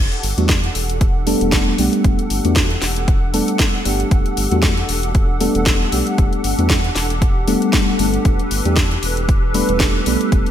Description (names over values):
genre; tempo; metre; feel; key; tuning
deep house; 116 BPM; 4/4; swing 56% on 16ths; E minor; A4 = 440 Hz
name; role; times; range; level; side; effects
hollow soft pad; sustained chords; 0.0-10.5 s; D4 to F#5; -25 LUFS; equal; ensemble chorus, sidechain pumping
round analog bass; bass; 0.0-10.4 s; E1 to E2; -22 LUFS; equal; sidechain pumping
house drum kit; drums; 0.1-10.5 s; hi-hat, snare drum; -22 LUFS; left 1 dB; overdrive, small room ambience
mellow FM electric piano; stabs; 0.4-10.5 s; G3 to B4; -20 LUFS; equal; chorus, phaser, sidechain pumping, digital delay
electronic kick drum; drums; 0.5-10.4 s; none; -17 LUFS; equal; small room ambience
room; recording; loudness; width
light reverb; bright 1980s-style digital production; -14 LUFS; side -10 dB against mid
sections
0.0-10.5 A section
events
none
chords
0.0 Em11; 8.3 Gadd9/E